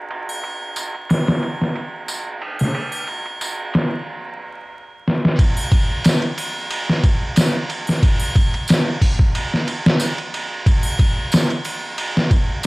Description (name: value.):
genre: trip hop.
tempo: 91 BPM.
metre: 4/4.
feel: swing 54% on 16ths.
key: none.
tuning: none.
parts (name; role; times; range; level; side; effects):
trip hop sampler-style drum kit; drums; 0.1-12.7 s; hi-hat, kick drum, ride cymbal, snare drum; -17 LUFS; equal; overdrive, low-pass filter on cymbals, studio reverb, low-pass filter on snare, low-pass filter on hats, low-pass filter on kick.
triangle and tambourine; percussion; 0.3-12.7 s; none; -30 LUFS; equal; none.
room: light reverb, digital ambience.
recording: vinyl crackle.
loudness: -17 LUFS.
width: side -23 dB against mid.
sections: 0.0-5.4 A section; 5.4-12.7 B section.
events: drum fill 5.1-5.4.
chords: none.